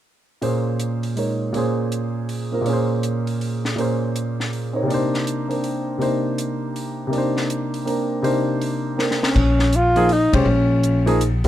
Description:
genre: modal jazz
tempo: 161 BPM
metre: 3/4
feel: swing 64% on 8ths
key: unclear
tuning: A4 = 440 Hz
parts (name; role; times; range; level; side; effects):
- warm grand piano; accompaniment; 0.4-11.5 s; Bb2 to Db5; -21 LUFS; right 1 dB; none
- compact cocktail drum kit; drums; 0.4-11.5 s; crash cymbal, hi-hat, kick drum, ride cymbal, snare drum; -27 LUFS; left 1 dB; none
- dark alto saxophone; melody; 9.3-11.1 s; Db4 to F4; -18 LUFS; left 1 dB; none
- upright bass; bass; 9.4-11.5 s; Bb1 to Cb2; -19 LUFS; equal; none
room: little or no reverb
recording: close, detailed microphones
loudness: -19 LUFS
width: side -12 dB against mid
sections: 0.4-9.4 A section; 9.4-11.5 B section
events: drum fill 9.0-9.4; band accent 10.3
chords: 0.4 Bbm9; 4.9 Cm9; 9.4 Bbm7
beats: | 0.43 0.81 1.18 | 1.55 1.92 2.29 | 2.66 3.03 3.40 | 3.78 4.15 4.52 | 4.89 5.26 5.64 | 6.01 6.38 6.75 | 7.12 7.50 7.87 | 8.24 8.61 8.98 | 9.36 9.73 10.10 | 10.47 10.84 11.22

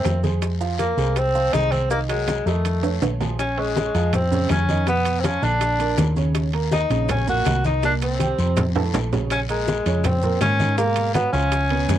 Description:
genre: Afro-Cuban jazz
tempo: 162 BPM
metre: 4/4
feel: straight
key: F minor, Bb minor from 3.4 s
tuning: A4 = 440 Hz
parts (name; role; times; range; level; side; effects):
- warm tenor saxophone; melody; 0.0-12.0 s; Ab3 to Gb4; -22 LUFS; left 1 dB; cassette tape
- warm baby grand piano; accompaniment; 0.0-12.0 s; A2 to Db6; -28 LUFS; right 10 dB; none
- hollow-body short-scale fingered electric bass; bass; 0.0-12.0 s; Bb1 to Ab2; -22 LUFS; equal; none
- bongos; percussion; 0.0-12.0 s; none; -32 LUFS; left 12 dB; none
- congas; percussion; 0.1-12.0 s; none; -27 LUFS; left 1 dB; none
- guiro; percussion; 0.1-12.0 s; none; -36 LUFS; left 12 dB; none
- maracas; percussion; 0.1-12.0 s; none; -40 LUFS; right 12 dB; none
- timbales; percussion; 0.1-12.0 s; none; -29 LUFS; right 10 dB; none
room: moderate booth ambience, RT60 0.2 s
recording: home recording on cassette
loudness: -18 LUFS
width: side -11 dB against mid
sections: 0.0-3.4 A section; 3.4-12.0 B section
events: drum fill 1.9-3.4, 8.2-9.3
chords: 0.4 Fm; 1.9 Cm7b5; 2.6 F7alt; 3.4 Bbm7; 4.9 Db13b9; 5.6 Bbadd11; 6.4 Ebm7; 7.8 C5; 8.6 F; 9.3 Bbm9; 10.8 Abm9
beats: 0.05 | 0.42 0.79 1.17 1.54 | 1.91 2.28 2.65 3.02 | 3.39 3.76 4.13 4.50 | 4.87 5.24 5.61 5.98 | 6.35 6.72 7.09 7.46 | 7.83 8.20 8.57 8.94 | 9.31 9.68 10.04 10.41 | 10.78 11.15 11.52 11.89

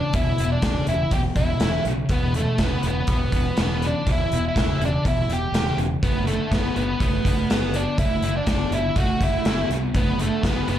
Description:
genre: classic rock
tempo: 122 BPM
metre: 4/4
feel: straight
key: unclear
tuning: A4 = 439 Hz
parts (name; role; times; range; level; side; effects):
- octave-fuzz lead guitar; melody; 0.0-10.8 s; A3 to G4; -26 LUFS; right 1 dB; distortion, slapback echo
- tight distorted guitar; riff; 0.0-10.8 s; E2 to B3; -26 LUFS; equal; distortion, slapback echo
- growling fingered electric bass; bass; 0.1-10.8 s; E1 to C2; -26 LUFS; equal; overdrive
- gated 80s drum kit; drums; 0.1-10.8 s; hi-hat, kick drum, snare drum; -23 LUFS; equal; none
room: light reverb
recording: live gig heard through the venue's PA, club reverb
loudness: -20 LUFS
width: side -11 dB against mid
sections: 0.0-10.8 A section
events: none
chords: 0.0 E5; 6.0 D/F#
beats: | 0.14 0.64 1.13 1.62 | 2.11 2.60 3.09 3.58 | 4.07 4.57 5.05 5.55 | 6.04 6.53 7.02 7.51 | 8.00 8.48 8.97 9.46 | 9.95 10.44

